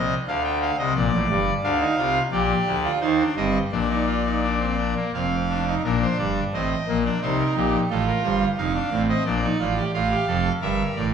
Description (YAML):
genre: classical, baroque-style 3-part fugue for pipe organ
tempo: 88 BPM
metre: 3/4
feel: straight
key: Bb major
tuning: A4 = 443 Hz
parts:
  - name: pipe organ, trumpet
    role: solo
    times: 0.0-11.1 s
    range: F1 to G5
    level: -20 LUFS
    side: equal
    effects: none
room: wet stone room reverb, RT60 1.2 s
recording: none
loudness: -20 LUFS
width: side -7 dB against mid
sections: 0.0-5.8 A section; 5.8-11.1 B section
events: none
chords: 0.0 F5; 1.0 Bbmaj7; 1.6 Bb; 3.0 Cm/Eb; 3.7 Bb; 5.1 F5; 5.8 Bb; 7.2 Cm7; 7.9 F7; 9.3 Bb; 9.9 F